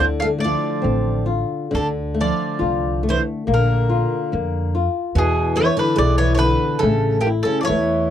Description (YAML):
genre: fado-style ballad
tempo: 71 BPM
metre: 2/4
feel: uneven beats, rubato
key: D minor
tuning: A4 = 440 Hz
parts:
  - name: mandolin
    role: melody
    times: 0.0-8.1 s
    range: G4 to F5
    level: -22 LUFS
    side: equal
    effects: none
  - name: picked twelve-string acoustic guitar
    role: second line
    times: 0.0-8.1 s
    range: Bb2 to A3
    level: -23 LUFS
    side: right 3 dB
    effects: none
  - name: flamenco guitar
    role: accompaniment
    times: 0.0-8.1 s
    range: D3 to F4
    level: -23 LUFS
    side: left 5 dB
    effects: none
  - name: upright bass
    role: bass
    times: 0.0-8.1 s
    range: A1 to F2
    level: -21 LUFS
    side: equal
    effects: none
room: little or no reverb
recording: dry, close 1970s-style studio recording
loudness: -17 LUFS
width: side -10 dB against mid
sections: 0.0-1.7 A section; 1.7-8.1 B section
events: none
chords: 0.0 Dm7; 1.7 Dm; 3.5 Bb; 5.2 E5; 6.8 A5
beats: 0.83 | 1.73 2.60 | 3.47 4.32 | 5.15 5.98 | 6.83 7.70